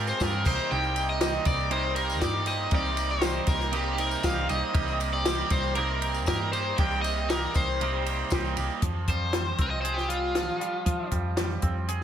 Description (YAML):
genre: indie rock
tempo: 118 BPM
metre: 4/4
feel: straight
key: C minor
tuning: A4 = 444 Hz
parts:
  - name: overdriven semi-hollow guitar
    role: melody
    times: 0.0-11.1 s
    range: F4 to G5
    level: -30 LUFS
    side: left 1 dB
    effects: none
  - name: lush unison pad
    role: sustained chords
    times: 0.0-8.8 s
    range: Ab3 to Bb5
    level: -40 LUFS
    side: equal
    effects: chorus
  - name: twangy electric guitar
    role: riff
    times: 0.0-12.0 s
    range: C3 to Ab4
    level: -32 LUFS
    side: right 5 dB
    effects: wide subtle chorus, slapback echo
  - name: hollow-body short-scale picked electric bass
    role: bass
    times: 0.0-12.0 s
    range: C2 to F3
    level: -31 LUFS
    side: equal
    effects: none
  - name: tambourine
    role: percussion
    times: 0.1-8.8 s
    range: none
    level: -44 LUFS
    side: left 8 dB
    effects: none
  - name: compact cocktail drum kit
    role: drums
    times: 0.2-12.0 s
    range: crash cymbal, hi-hat, kick drum, ride cymbal, snare drum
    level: -29 LUFS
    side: equal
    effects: none
room: moderate lush hall reverb, RT60 1.8 s, small room ambience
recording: big arena sound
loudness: -24 LUFS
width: side -9 dB against mid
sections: 0.0-8.8 A section; 8.8-12.0 B section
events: overdriven electric guitar solo 8.8-12.0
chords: 0.5 Cm7; 8.8 Fmadd9